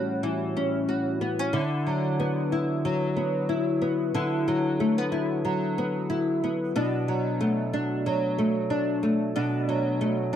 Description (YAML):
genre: indie pop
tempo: 92 BPM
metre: 4/4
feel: swing 55% on 16ths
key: unclear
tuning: A4 = 440 Hz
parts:
  - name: nylon-string guitar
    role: solo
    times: 0.0-10.4 s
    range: A2 to F#4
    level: -24 LUFS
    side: equal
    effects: analog chorus, vibrato effect
room: light reverb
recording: dry, close 1970s-style studio recording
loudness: -24 LUFS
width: side -9 dB against mid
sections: 0.0-10.4 A section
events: none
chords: 0.0 A13; 1.5 D69; 6.8 Bm7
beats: 0.23 0.89 | 1.54 2.19 2.84 3.50 | 4.15 4.80 5.45 6.10 | 6.75 7.40 8.05 8.71 | 9.36 10.01